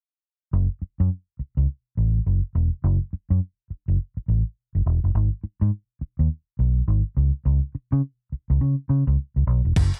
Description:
R&B, new jack swing; 104 BPM; 4/4; swing 62% on 16ths; F# dorian; A4 = 439 Hz
vintage muted fingered electric bass; bass; 0.5-9.9 s; E1 to C#3; -22 LUFS; equal
crisp 8-bit digital drum machine; drums; 9.8-10.0 s; crash cymbal, hi-hat, kick drum; -24 LUFS; equal
little or no reverb; dry, close 1970s-style studio recording; -24 LUFS; mono
0.5-9.8 A section

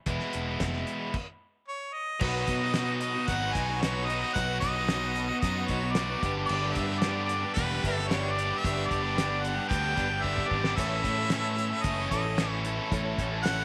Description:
classic rock; 112 BPM; 4/4; straight; A4 = 440 Hz
crunchy overdriven guitar; riff; 0.1-13.6 s; G2 to E4; -37 LUFS; equal
tight distorted guitar; riff; 0.1-13.6 s; E2 to A4; -37 LUFS; equal; distortion
fingered electric bass; bass; 0.1-13.6 s; E1 to B2; -36 LUFS; equal
damped 70s drum kit; drums; 0.1-13.6 s; crash cymbal, hi-hat, kick drum, snare drum; -34 LUFS; equal
clear harmonica; melody; 1.7-13.6 s; B4 to G#5; -34 LUFS; equal
mellow reed electric piano; accompaniment; 2.2-13.6 s; E4 to C#6; -45 LUFS; equal
picked twelve-string acoustic guitar; accompaniment; 2.2-13.6 s; G2 to A4; -44 LUFS; equal
bright tonewheel organ; sustained chords; 2.2-13.6 s; B3 to C#5; -44 LUFS; equal
moderate spring reverb, RT60 1.2 s, small room ambience; -29 LUFS; mono
0.0-2.2 A section; 2.2-13.6 B section
stop 1.1-2.2; drum fill 10.2-10.8
0.1 E; 1.1 N.C.; 2.2 B; 6.2 G; 10.8 A

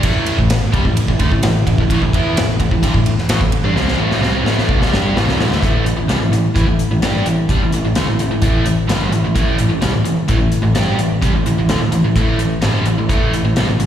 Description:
hard rock; 129 BPM; 4/4; straight; A minor; A4 = 440 Hz
biting overdriven guitar; riff; 0.0-13.9 s; G2 to G4; -17 LUFS; equal; slapback echo
overdriven picked electric bass; bass; 0.0-13.9 s; G1 to G2; -18 LUFS; equal
big rock drum kit; drums; 0.0-13.9 s; hi-hat, kick drum, ride cymbal, snare drum; -19 LUFS; equal
light reverb; live gig heard through the venue's PA, recital hall reverb; -13 LUFS; side -10 dB against mid
0.0-5.6 A section; 5.6-13.9 B section
drum fill 3.8-5.6
0.0 Am

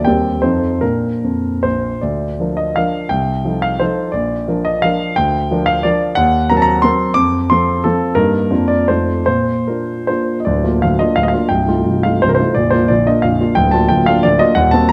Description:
classical, romantic triple-time dance for piano with dotted rhythms; 139-196 BPM; 3/4; rubato; Bb major; A4 = 441 Hz
warm baby grand piano; solo; 0.0-14.9 s; Bb0 to D6; -15 LUFS; equal
moderate scoring stage reverb, RT60 2.0 s; close, detailed microphones; -15 LUFS; mono
0.0-2.0 A section; 2.0-10.5 B section; 10.5-14.9 B section
0.1 Cm7/Eb; 0.4 F7; 0.8 Bb; 2.0 Bb/D; 3.1 F7/C; 4.1 Bb; 5.2 Bb/D; 6.2 Cm7b5/Eb; 7.2 F; 8.2 Eb/G; 8.5 Bb/F; 8.9 F7; 9.3 Bb; 10.5 Bb/D; 11.5 F7/C; 12.6 Bb; 13.6 Bb/D

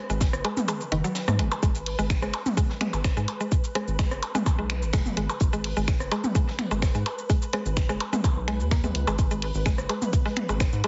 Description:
minimal techno; 127 BPM; 4/4; straight; G# minor; A4 = 441 Hz
flickering grainy texture; texture; 0.1-10.9 s; B4; -41 LUFS; equal; built-in reverb, sidechain pumping
mallet-like synth pluck; riff; 0.1-10.9 s; D#3 to A#3; -34 LUFS; equal; chorus, sidechain pumping, dub echo
rubbery square bass; bass; 0.1-10.8 s; F#1 to G#2; -31 LUFS; equal; tube saturation, sidechain pumping
house drum kit; drums; 0.1-10.9 s; cabasa, finger snaps, hi-hat; -37 LUFS; equal
deep reggae drum kit; drums; 0.2-10.9 s; hi-hat, snare drum; -44 LUFS; equal
electronic kick drum; drums; 0.2-10.7 s; -26 LUFS; equal
minimal click drum kit; percussion; 0.3-10.9 s; percussion blips, rim click, toms; -33 LUFS; equal; dub echo
light reverb; heavily compressed radio sound, multiband compression, nothing above 7.7 kHz; -26 LUFS; mono
0.0-10.9 A section
kick drops out 0.7-1.6
0.0 G#m

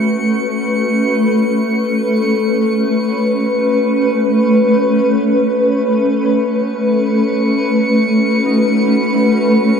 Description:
ambient; free time; A lydian; A4 = 440 Hz
granular cloud pad; sustained chords; 0.0-9.8 s; A3 to B4; -12 LUFS; equal; built-in reverb
drifting glass-harmonics texture; texture; 0.0-9.8 s; C#7; -25 LUFS; right 2 dB; chorus, built-in reverb
concert harp; arpeggios; 6.2-9.8 s; B3 to E4; -35 LUFS; left 1 dB
wet huge ambient reverb, RT60 7.5 s; dark, warm production; -12 LUFS; side -6 dB against mid
0.0-5.6 A section; 5.6-9.8 B section
fade-out on synth texture 0.0-5.6
0.0 A69

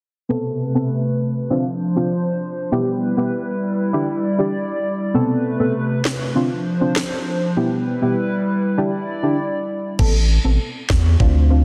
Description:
dancehall; 99 BPM; 4/4; straight; A minor; A4 = 440 Hz
deep mellow chord stab; accompaniment; 0.3-11.6 s; B3 to A4; -24 LUFS; equal; chorus, phaser, low-pass filter
hollow soft pad; sustained chords; 0.5-10.0 s; C3 to D5; -24 LUFS; equal; chorus, sidechain pumping, low-pass filter
island pop drum kit; drums; 6.1-11.3 s; crash cymbal, kick drum, rim click, snare drum; -24 LUFS; equal
saturated sub bass; bass; 10.0-11.6 s; A1 to E2; -17 LUFS; equal
moderate lush hall reverb, RT60 3.0 s; dense, heavily limited modern master; -20 LUFS; mono
0.3-10.0 A section; 10.0-11.6 B section
filter sweep 0.3-10.0
0.3 Amadd9; 1.5 Dm7; 2.7 G6; 3.9 Em7; 5.1 Amadd9; 6.4 Dm7; 7.6 G6; 8.8 Em7; 10.0 Amadd9

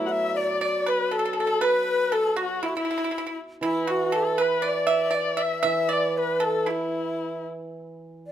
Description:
chinese traditional, Chinese chamber ensemble; 59 BPM; 2/4; rubato; A4 = 438 Hz
breathy bright low xiao; melody; 0.0-8.3 s; E4 to E5; -27 LUFS; left 1 dB
dark erhu; second line; 0.0-7.5 s; E4 to F#5; -29 LUFS; left 6 dB
pipa; second line; 0.0-7.4 s; E4 to E5; -28 LUFS; right 5 dB
hammered dulcimer; accompaniment; 0.0-8.3 s; A2 to E4; -29 LUFS; right 3 dB
light reverb; close, detailed microphones; -22 LUFS; side -10 dB against mid
0.0-8.3 A section

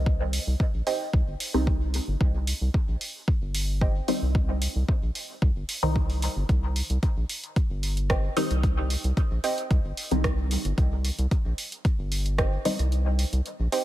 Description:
dub techno; 112 BPM; 4/4; straight; C minor; A4 = 441 Hz
round analog bass; bass; 0.0-13.7 s; G1 to C2; -26 LUFS; equal; sidechain pumping
electronic kick drum; drums; 0.1-12.5 s; -24 LUFS; equal; overdrive
punchy analog drum machine; drums; 0.3-13.8 s; hi-hat, rim click; -32 LUFS; right 1 dB; overdrive
warbly dusty pluck; riff; 0.9-3.9, 8.1-13.8 s; C5 to G5; -33 LUFS; right 4 dB; chorus, sidechain pumping, dub echo
filtered dub chord stab; stabs; 1.5-12.8 s; Eb3 to Eb4; -31 LUFS; left 1 dB; phaser, sidechain pumping, dub echo
digital ambience; -24 LUFS; side -14 dB against mid
0.0-13.8 A section
kick drops out 12.9-13.8
0.0 Cm

